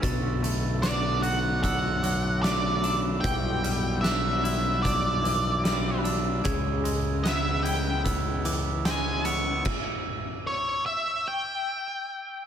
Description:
post-rock; 75 BPM; 4/4; straight; A4 = 440 Hz
pedal steel guitar; sustained chords; 0.0-9.6 s; C#3 to B4; -37 LUFS; right 1 dB
glockenspiel with brass mallets; arpeggios; 0.0-9.7 s; D6 to A6; -36 LUFS; right 6 dB; analog delay
twangy electric guitar; arpeggios; 0.0-9.7 s; B2 to F#4; -34 LUFS; left 3 dB; tremolo, analog delay
fuzz fingered electric bass; bass; 0.0-9.6 s; B1 to C#2; -29 LUFS; equal; overdrive
oversized low-tuned drum kit; drums; 0.0-9.8 s; crash cymbal, hi-hat, kick drum, snare drum; -30 LUFS; equal
octave-fuzz lead guitar; melody; 0.8-12.4 s; C#5 to C#6; -29 LUFS; equal; distortion, analog delay
light reverb; -24 LUFS; side -8 dB against mid
0.0-12.5 A section
stop 9.7-12.5
0.0 Bm7; 3.2 Em7/B; 6.4 C#m7; 9.7 N.C.

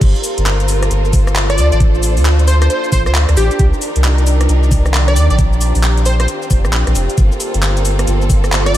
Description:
UK garage, two-step garage; 134 BPM; 4/4; swing 63% on 16ths; G minor; A4 = 440 Hz
warm symphonic violin section; sustained chords; 0.0-8.8 s; Bb3 to C5; -23 LUFS; right 1 dB; vintage 12-bit sampler grit, sidechain pumping
soft dub sub bass; bass; 0.0-8.8 s; F1 to Eb2; -13 LUFS; equal
electronic kick drum; drums; 0.0-8.4 s; -13 LUFS; equal
garage drum kit; drums; 0.0-8.8 s; cabasa, crash cymbal, handclaps, hi-hat, rim click; -20 LUFS; equal; low-pass filter on hats, low-pass filter on snare, low-pass filter on cymbals, low-pass filter on perc
deep dark ambient pad; texture; 0.0-8.8 s; Eb3 to Bb5; -23 LUFS; right 1 dB; chorus, built-in reverb, sidechain pumping
plucky unison lead; melody; 1.5-8.8 s; G4 to D5; -22 LUFS; equal; analog delay
light reverb; -11 LUFS; side -13 dB against mid
0.0-8.8 A section
drop 0.0-8.8
0.0 Gm11; 1.6 Dm7; 3.6 Cm9; 5.4 Bb69; 7.2 Gm11

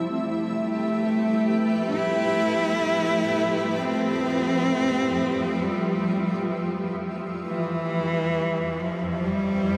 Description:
ambient; free time; F lydian; A4 = 440 Hz
granular cloud pad; sustained chords; 0.0-9.8 s; F2 to E5; -29 LUFS; equal; built-in reverb
organ-like drone; drone; 0.0-9.8 s; G3; -43 LUFS; equal
rich cello; melody; 0.1-9.8 s; E3 to E4; -27 LUFS; equal; diffuse ambient delay
wet huge ambient reverb, RT60 8.2 s; -25 LUFS; mono
0.0-9.8 A section
0.1 Fmaj9#11; 7.4 C/F

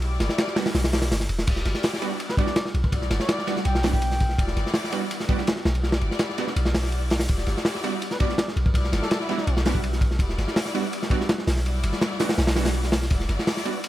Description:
drum and bass, jungle; 165 BPM; 4/4; straight; E minor; A4 = 440 Hz
warm studio string section; sustained chords; 0.0-13.9 s; E3 to D5; -32 LUFS; left 2 dB
warm 808-style bass; bass; 0.0-13.4 s; E1 to B1; -24 LUFS; equal; tube saturation
crunchy breakbeat drum kit; drums; 0.0-13.9 s; crash cymbal, hi-hat, kick drum, ride cymbal, snare drum; -24 LUFS; equal
orchestra-hit-like synth stab; stabs; 0.6-13.8 s; F#3 to F#4; -31 LUFS; right 5 dB; built-in reverb, cassette tape, dub echo
trumpet with bucket mute; melody; 2.3-4.4, 8.1-9.6 s; E4 to G5; -34 LUFS; equal; vintage 12-bit sampler grit, dub echo
studio ambience; -21 LUFS; side -14 dB against mid
0.0-1.5 A section; 1.5-13.9 A section
drop 0.0-1.5, 1.5-13.9
0.0 Em9

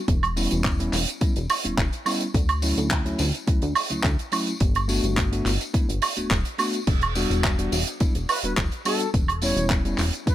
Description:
nu-disco, nu disco; 106 BPM; 4/4; straight; E dorian; A4 = 440 Hz
chorused synth bass; bass; 0.1-10.1 s; D1 to D2; -26 LUFS; equal
damped 70s drum kit; drums; 0.1-10.3 s; crash cymbal, handclaps, hi-hat, tambourine, woodblock; -26 LUFS; right 3 dB
electronic kick drum; drums; 0.1-10.3 s; -23 LUFS; equal; overdrive
bell-like tine electric piano; accompaniment; 0.4-10.3 s; F#3 to F#4; -28 LUFS; left 1 dB; sidechain pumping, ping-pong delay
mellow silver concert flute; melody; 8.3-10.3 s; A4 to C#5; -30 LUFS; left 2 dB; ping-pong delay
small room ambience; -21 LUFS; side -13 dB against mid
0.0-10.3 A section
0.1 Em6; 2.3 Dmaj7; 4.6 Gmaj7; 6.9 Em7; 9.1 Em6

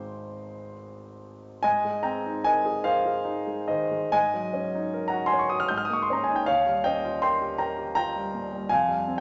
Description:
classical, impressionist solo piano; 66-83 BPM; 3/4; rubato; Ab major; A4 = 440 Hz
warm concert grand piano; solo; 0.0-9.2 s; Ab1 to G6; -27 LUFS; equal
wet recital hall reverb, RT60 1.5 s; nothing above 7.7 kHz; -26 LUFS; mono
0.0-1.6 A section; 1.6-9.2 B section
0.0 Ab6; 1.6 Abadd9; 4.1 Gb69/Ab; 5.7 Bbm7/Ab; 6.5 Eb9

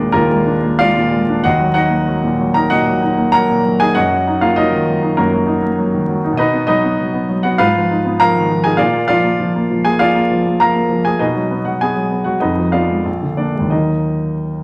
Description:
classical, romantic character piece for solo piano; 98 BPM; 4/4; uneven beats, rubato; Eb minor; A4 = 442 Hz
warm grand piano; solo; 0.0-14.6 s; Bb1 to Bb5; -16 LUFS; equal
wet large studio reverb, RT60 1.1 s; vinyl crackle; -15 LUFS; mono
0.0-14.6 A section
0.0 Bb7/Eb; 1.4 Ebm; 4.0 Ebm/Gb; 6.4 B; 7.6 Fm7b5/Ab; 8.8 Bb; 11.2 B; 12.4 Fm7b5; 13.1 Bb7; 13.7 Ebm

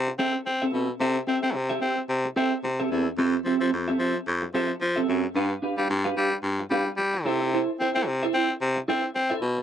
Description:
disco; 110 BPM; 4/4; swing 56% on 16ths; C major; A4 = 441 Hz
raspy baritone saxophone; bass; 0.0-9.6 s; E2 to C4; -25 LUFS; left 1 dB
clean electric guitar; accompaniment; 0.1-9.6 s; C4 to F5; -27 LUFS; right 2 dB; lush chorus
light reverb, small room ambience; nothing above 10.3 kHz; -23 LUFS; side -9 dB against mid
0.0-9.6 A section
0.0 C6; 3.2 Fmaj9; 5.3 G7; 7.2 C6

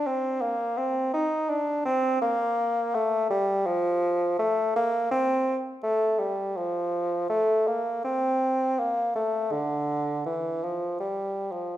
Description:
classical, baroque-style fantasia for unaccompanied bassoon; 82 BPM; 4/4; rubato; D minor; A4 = 440 Hz
warm bassoon; solo; 0.0-11.8 s; D3 to Eb4; -24 LUFS; equal
wet recital hall reverb, RT60 1.5 s; recorded in a church or concert hall; -24 LUFS; side -13 dB against mid
0.0-11.8 A section

